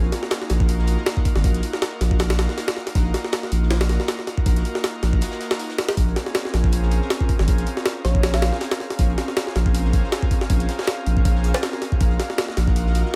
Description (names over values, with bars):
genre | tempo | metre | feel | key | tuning
drum and bass, jungle | 159 BPM | 4/4 | swing 55% on 16ths | unclear | A4 = 440 Hz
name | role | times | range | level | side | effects
airy breathy pad | sustained chords | 0.0-13.2 s | Bb3 to Bb4 | -32 LUFS | equal | chorus
saturated sub bass | bass | 0.0-13.0 s | Ab1 to Bb1 | -23 LUFS | equal | none
crunchy breakbeat drum kit | drums | 0.0-13.1 s | hi-hat, snare drum | -43 LUFS | equal | none
jungle sampler-style drum kit | drums | 0.1-13.0 s | hi-hat, kick drum, snare drum | -24 LUFS | equal | none
wind-like tuned noise texture | texture | 6.5-13.2 s | F5 | -39 LUFS | equal | built-in reverb
thumb-piano-like synth pluck | melody | 8.0-8.6 s | Db5 to F5 | -33 LUFS | equal | chorus, dub echo
room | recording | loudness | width
digital ambience | none | -21 LUFS | mono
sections
0.0-13.2 A section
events
break 5.2-6.0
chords
0.0 Ebmadd9; 6.0 Bbm9; 12.0 Ebmadd9